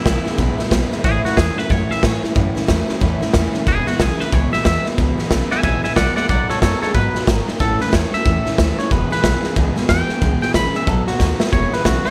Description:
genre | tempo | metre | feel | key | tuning
rockabilly | 183 BPM | 4/4 | swing 62% on 8ths | E major | A4 = 439 Hz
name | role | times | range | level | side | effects
twangy electric guitar | melody | 0.0-12.1 s | E4 to B5 | -24 LUFS | equal | analog delay
picked steel-string acoustic guitar | accompaniment | 0.0-12.1 s | E2 to A4 | -29 LUFS | equal | none
electric guitar through a small old amp | riff | 0.0-12.1 s | E2 to G#3 | -27 LUFS | equal | ensemble chorus
upright bass | bass | 0.1-12.1 s | E1 to A2 | -24 LUFS | equal | none
raw garage drum kit | drums | 0.1-12.1 s | hi-hat, kick drum, snare drum | -21 LUFS | equal | none
room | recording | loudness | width
light reverb | none | -18 LUFS | mono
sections
0.0-11.5 A section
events
drum fill 11.2-11.5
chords
0.0 E; 1.0 A; 3.7 E; 6.3 B; 7.6 A; 8.9 E; 10.9 B; 11.5 E

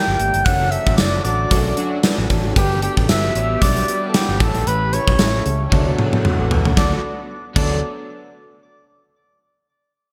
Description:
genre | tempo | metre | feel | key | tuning
1980s-style pop | 114 BPM | 4/4 | swing 55% on 16ths | D major | A4 = 437 Hz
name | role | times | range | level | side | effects
breathy flugelhorn | melody | 0.0-7.8 s | G4 to G5 | -25 LUFS | equal | delay
soft synth bell | second line | 0.0-7.8 s | G5 to G6 | -34 LUFS | equal | none
crunchy overdriven guitar | accompaniment | 0.0-7.8 s | A2 to G4 | -35 LUFS | equal | none
warm baby grand piano | accompaniment | 0.0-7.8 s | F#3 to F#5 | -29 LUFS | equal | lush chorus
lush unison pad | sustained chords | 0.1-7.0 s | C#3 to G4 | -33 LUFS | equal | none
vintage muted fingered electric bass | bass | 0.1-7.8 s | F#1 to E2 | -24 LUFS | equal | none
gated 80s drum kit | drums | 0.2-7.7 s | crash cymbal, hi-hat, kick drum, snare drum, tambourine, toms | -20 LUFS | equal | gated reverb
analog synth brass | stabs | 0.6-2.0, 6.8-7.8 s | F#3 to A4 | -33 LUFS | equal | none
room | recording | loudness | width
moderate lush hall reverb, RT60 1.9 s, small room reverb | bright 1980s-style digital production | -18 LUFS | mono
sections
0.0-6.8 A section; 6.8-8.9 B section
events
drum fill 5.7-6.8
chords
0.5 Dmaj7/F#; 2.6 Gmaj7; 4.4 A7; 5.7 D6

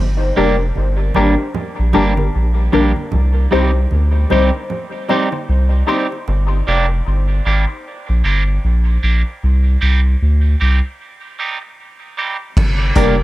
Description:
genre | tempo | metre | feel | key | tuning
dub reggae | 76 BPM | 4/4 | swing 59% on 16ths | C minor | A4 = 439 Hz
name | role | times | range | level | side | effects
soft dub sub bass | bass | 0.0-13.2 s | F1 to D2 | -14 LUFS | equal | none
electric guitar at the edge of break-up | accompaniment | 0.4-13.2 s | G3 to G4 | -21 LUFS | right 4 dB | high-pass filter, dub echo
filtered dub chord stab | stabs | 0.4-6.1, 13.0-13.2 s | D4 to C5 | -20 LUFS | left 5 dB | phaser, high-pass filter, dub echo
congas | percussion | 0.8-6.5, 12.6-12.8 s | none | -28 LUFS | right 5 dB | high-pass filter on perc, dub echo
vintage drum kit | drums | 12.6-13.2 s | crash cymbal, hi-hat, kick drum | -17 LUFS | equal | none
room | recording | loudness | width
light reverb, studio reverb | none | -13 LUFS | side -16 dB against mid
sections
0.0-12.6 A section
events
filter sweep 3.1-12.6; part muted 6.3-12.6; break 11.0-12.6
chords
0.0 Gm; 3.1 Cm; 6.3 Gm; 9.4 Cm; 12.6 Gm

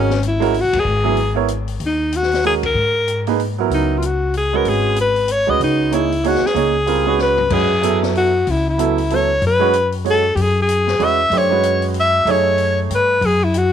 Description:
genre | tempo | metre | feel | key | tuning
modal jazz | 189 BPM | 3/4 | swing 60% on 8ths | F# dorian from 7.5 s | A4 = 440 Hz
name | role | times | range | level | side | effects
breathy alto saxophone | melody | 0.0-13.7 s | C#4 to E5 | -17 LUFS | left 2 dB | none
clear grand piano | accompaniment | 0.0-13.1 s | F#3 to C#5 | -20 LUFS | right 13 dB | none
upright bass | bass | 0.0-13.7 s | F#1 to G#2 | -21 LUFS | left 2 dB | none
open jazz drum kit | drums | 0.1-13.6 s | crash cymbal, hi-hat, kick drum, ride cymbal, snare drum, toms | -30 LUFS | left 12 dB | none
room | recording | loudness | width
small room ambience | 1960s-style stereo with parts hard left and right | -14 LUFS | side -9 dB against mid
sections
0.0-7.5 A section; 7.5-13.7 B section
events
band accent 0.7, 2.6; drum fill 7.2-7.5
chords
0.0 G#m9; 3.7 C#9sus4; 7.5 F#9sus4

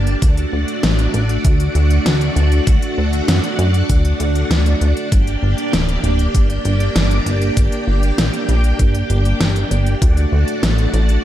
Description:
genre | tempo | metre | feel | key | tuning
synthwave | 98 BPM | 4/4 | straight | G harmonic minor | A4 = 439 Hz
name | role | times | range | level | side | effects
string machine, full ensemble | sustained chords | 0.0-11.2 s | A3 to A5 | -21 LUFS | right 1 dB | ensemble chorus, sidechain pumping
chorused synth bass | bass | 0.0-11.2 s | D1 to F#2 | -16 LUFS | equal | sidechain pumping
pop drum kit | drums | 0.1-11.2 s | hi-hat, snare drum, toms | -21 LUFS | left 1 dB | studio ambience, gated reverb
electronic kick drum | drums | 0.2-10.1 s | none | -14 LUFS | equal | studio ambience
room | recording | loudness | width
little or no reverb | none | -14 LUFS | side -12 dB against mid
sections
0.0-11.2 A section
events
none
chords
0.2 D; 5.1 Gm; 10.0 D

